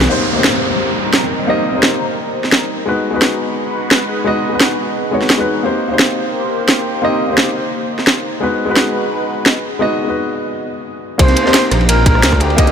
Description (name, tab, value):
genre	liquid drum and bass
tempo	173 BPM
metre	4/4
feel	straight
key	C minor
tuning	A4 = 440 Hz
part	dark baby grand piano	accompaniment	0.0-12.7 s	Ab3 to Eb5	-18 LUFS	left 1 dB	ping-pong delay
part	lush unison pad	sustained chords	0.0-12.7 s	G3 to C5	-22 LUFS	equal	chorus, phaser, sidechain pumping
part	swelling detuned saw bass	bass	0.0-0.1, 11.2-12.7 s	Bb1 to D2	-14 LUFS	equal	none
part	crunchy breakbeat drum kit	drums	0.0-0.1, 11.2-12.7 s	ride cymbal, snare drum	-23 LUFS	equal	high-pass filter on cymbals, studio ambience, high-pass filter on hats, high-pass filter on snare, high-pass filter on room
part	garage drum kit	drums	0.0-12.7 s	hi-hat, rim click, snare drum	-16 LUFS	equal	overdrive, studio ambience
part	downlifter	sound effects	0.1-2.9 s	none	-21 LUFS	equal	none
part	breathy flugelhorn	melody	11.2-12.7 s	G4 to C5	-17 LUFS	right 2 dB	ping-pong delay
part	electronic kick drum	drums	11.2-12.7 s	none	-12 LUFS	equal	overdrive, studio ambience
room	moderate huge ambient reverb, RT60 4.3 s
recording	none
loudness	-12 LUFS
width	side -7 dB against mid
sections	0.1-11.2 A section; 11.2-12.7 B section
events	break 9.8-11.2; drop 11.2-12.7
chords	0.1 Cm7; 2.9 Abm7; 5.6 Cm7; 8.4 Abm7; 11.2 Cm7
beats	| 0.10 0.44 0.79 1.14 | 1.48 1.83 2.18 2.52 | 2.87 3.22 3.56 3.91 | 4.26 4.61 4.95 5.30 | 5.65 5.99 6.34 6.69 | 7.03 7.38 7.73 8.07 | 8.42 8.77 9.11 9.46 | 9.81 10.15 10.50 10.85 | 11.20 11.54 11.89 12.23 | 12.58